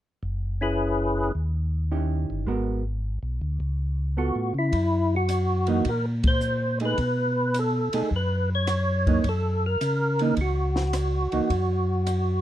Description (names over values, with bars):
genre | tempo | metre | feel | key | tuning
soul jazz organ trio | 106 BPM | 4/4 | swing 68% on 8ths | F# mixolydian | A4 = 440 Hz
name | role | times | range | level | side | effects
mellow tonewheel organ | bass | 0.2-12.4 s | F#1 to C#3 | -26 LUFS | equal | slow rotary speaker
percussive tonewheel organ | melody | 0.6-12.4 s | C#4 to C#5 | -26 LUFS | equal | slow rotary speaker, chorus vibrato
vintage hollow-body jazz guitar | accompaniment | 1.9-11.5 s | D#3 to A#4 | -28 LUFS | right 4 dB | none
compact cocktail drum kit | drums | 4.7-12.2 s | hi-hat, kick drum, ride cymbal, rim click, snare drum | -29 LUFS | equal | none
room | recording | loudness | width
little or no reverb | dark, warm production | -23 LUFS | side -12 dB against mid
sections
0.2-4.7 A section; 4.7-12.4 B section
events
band accent 6.1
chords
0.2 F#9sus4; 1.4 D#7b9; 2.5 G#m9; 3.6 C#aug7; 4.7 F#13; 7.0 B9; 9.2 F#